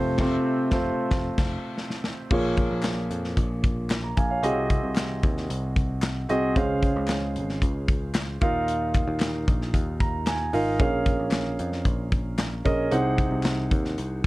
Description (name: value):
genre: piano-driven pop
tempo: 113 BPM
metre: 4/4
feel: straight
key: Bb minor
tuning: A4 = 440 Hz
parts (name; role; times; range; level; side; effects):
- dark concert grand piano; accompaniment; 0.0-14.3 s; Bb2 to Bb5; -26 LUFS; right 1 dB; none
- picked electric bass; bass; 0.0-14.3 s; F1 to F2; -30 LUFS; equal; none
- modern studio drum kit; drums; 0.2-14.3 s; crash cymbal, handclaps, hi-hat, kick drum, snare drum; -26 LUFS; equal; none
- group handclap; percussion; 2.8-13.6 s; none; -38 LUFS; left 4 dB; none
room: little or no reverb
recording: cassette tape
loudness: -23 LUFS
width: side -19 dB against mid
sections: 0.0-2.3 A section; 2.3-14.3 B section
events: band accent 0.2-2.3; grand piano fill 0.7-2.3, 9.7-10.8; drum fill 1.8-2.3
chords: 0.0 F; 2.3 Bbm7; 4.4 Ab7/C; 6.6 Dbmaj7; 8.4 Ebsus2; 10.8 Bbm7; 12.9 Ab7/C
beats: | 0.19 0.72 1.25 1.78 | 2.31 2.84 3.37 3.90 | 4.43 4.96 5.50 6.03 | 6.56 7.09 7.62 8.15 | 8.68 9.21 9.74 10.27 | 10.80 11.33 11.86 12.39 | 12.92 13.45 13.98